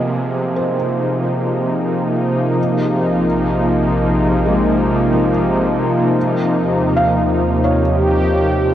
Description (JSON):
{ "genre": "ambient", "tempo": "free time", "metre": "none", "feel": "none", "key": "unclear", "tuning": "A4 = 437 Hz", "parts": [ { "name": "warm analog pad", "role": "sustained chords", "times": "0.0-8.7 s", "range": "C3 to Ab4", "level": "-15 LUFS", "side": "equal", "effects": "chorus, tremolo" }, { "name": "felt-muted upright piano", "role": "arpeggios", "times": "0.0-8.7 s", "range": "F3 to F5", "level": "-23 LUFS", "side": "right 1 dB", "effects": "tape echo" }, { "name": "round analog bass", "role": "bass", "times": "2.6-8.7 s", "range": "Bb1 to Eb2", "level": "-23 LUFS", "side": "equal", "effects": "none" } ], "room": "wet huge ambient reverb, RT60 7.6 s", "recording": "worn, warbling old tape, cassette tape, warbly pitch drift", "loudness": "-14 LUFS", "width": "side -11 dB against mid", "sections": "0.0-2.6 A section; 2.6-8.7 B section", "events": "none", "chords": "0.0 Abadd9; 2.6 Bb5; 6.2 Eb7" }